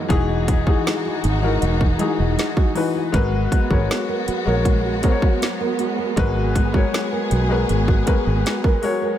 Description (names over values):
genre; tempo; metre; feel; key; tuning
contemporary R&B; 79 BPM; 4/4; straight; G# minor; A4 = 440 Hz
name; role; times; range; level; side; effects
clear concert grand piano; accompaniment; 0.0-9.2 s; E3 to D#5; -23 LUFS; left 5 dB; none
warm symphonic string section; sustained chords; 0.0-9.2 s; E3 to G#4; -27 LUFS; equal; none
nylon-string guitar; arpeggios; 0.0-9.2 s; F#2 to A#4; -27 LUFS; right 8 dB; ping-pong delay
downlifter; sound effects; 0.0-3.1 s; none; barely audible; none; none
fingered electric bass; bass; 0.1-8.4 s; E1 to B1; -21 LUFS; equal; none
trap drum kit; drums; 0.1-9.0 s; hi-hat, kick drum, snare drum; -20 LUFS; equal; none
room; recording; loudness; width
studio ambience; none; -17 LUFS; side -11 dB against mid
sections
0.0-9.2 A section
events
none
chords
0.1 Emaj9; 3.1 G#m9